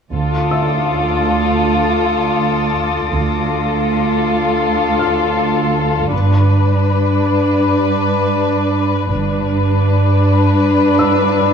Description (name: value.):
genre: cinematic.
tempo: 80 BPM.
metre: 4/4.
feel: straight.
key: D dorian.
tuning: A4 = 440 Hz.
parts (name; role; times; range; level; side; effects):
rich studio violin section; second line; 0.1-11.5 s; D4 to B4; -16 LUFS; left 3 dB; none.
warm studio cello section; bass; 0.1-11.5 s; D2 to G2; -17 LUFS; right 3 dB; none.
warm studio double bass section; bass; 0.1-9.8 s; G1 to D2; -22 LUFS; right 2 dB; none.
rich studio violin section; texture; 0.1-5.7 s; D6 to A6; -27 LUFS; left 4 dB; none.
felt-muted upright piano; texture; 0.5-11.5 s; E5 to F6; -27 LUFS; left 1 dB; none.
room: wet concert hall reverb, RT60 1.9 s.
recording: dark, warm production.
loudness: -13 LUFS.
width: side -6 dB against mid.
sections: 0.1-11.5 A section.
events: none.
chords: 0.1 Dm; 6.1 G.